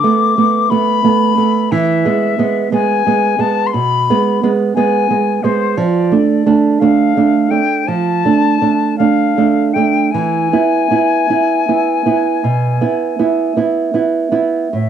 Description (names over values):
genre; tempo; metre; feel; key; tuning
romantic duo for flute and classical guitar; 51-60 BPM (dotted quarters); 12/8; rubato; unclear; A4 = 440 Hz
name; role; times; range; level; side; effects
silver concert flute; melody; 0.0-14.9 s; C5 to D6; -17 LUFS; left 9 dB; cassette tape
nylon-string guitar; accompaniment; 0.0-14.9 s; A2 to E4; -13 LUFS; right 5 dB; none
room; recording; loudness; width
light reverb, small room ambience; home recording on cassette; -12 LUFS; side -8 dB against mid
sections
0.0-14.7 A section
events
none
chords
0.0 Bm7; 1.7 E; 5.8 Dm/F; 10.1 E